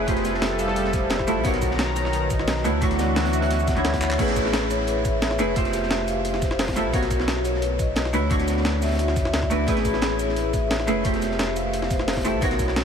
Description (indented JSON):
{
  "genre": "liquid drum and bass",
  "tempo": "175 BPM",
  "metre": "4/4",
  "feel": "straight",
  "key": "unclear",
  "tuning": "A4 = 440 Hz",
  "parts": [
    { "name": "vintage hollow-body jazz guitar", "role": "accompaniment", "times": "0.0-12.8 s", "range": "A3 to C#6", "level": "-26 LUFS", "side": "right 1 dB", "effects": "lush chorus, diffuse ambient delay" },
    { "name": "warm analog pad", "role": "sustained chords", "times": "0.0-4.2 s", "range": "D#3 to A#5", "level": "-30 LUFS", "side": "equal", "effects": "chorus" },
    { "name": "vibraphone with soft mallets", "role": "arpeggios", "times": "0.0-12.8 s", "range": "F#4 to F#5", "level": "-27 LUFS", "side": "left 2 dB", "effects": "diffuse ambient delay" },
    { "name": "sub bass with octave", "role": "bass", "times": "0.0-12.8 s", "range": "F1 to D2", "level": "-28 LUFS", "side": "equal", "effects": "none" },
    { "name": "breakbeat sampler-style drum kit", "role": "drums", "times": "0.1-12.8 s", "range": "crash cymbal, handclaps, hi-hat, shaker, snare drum", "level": "-28 LUFS", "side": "equal", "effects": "none" },
    { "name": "crunchy breakbeat drum kit", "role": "drums", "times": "0.1-12.8 s", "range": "hi-hat, snare drum", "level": "-35 LUFS", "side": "equal", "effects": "none" },
    { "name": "electronic kick drum", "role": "drums", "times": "0.1-12.7 s", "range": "none", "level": "-27 LUFS", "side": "equal", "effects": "none" }
  ],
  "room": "moderate huge ambient reverb, RT60 7.6 s",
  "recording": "dreamy mix soaked in reverb",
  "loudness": "-20 LUFS",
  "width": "side -7 dB against mid",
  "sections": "0.0-4.2 A section; 4.2-12.8 A section",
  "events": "drop 0.0-4.2, 4.2-12.8; drum fill 4.0; band accent 4.1",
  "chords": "0.1 Fmaj9; 1.4 Bmaj9; 2.6 Dmaj9; 4.2 Amaj9; 5.6 Fmaj9; 6.9 Bmaj9; 8.1 Dmaj9; 9.7 Amaj9; 11.1 Fmaj9"
}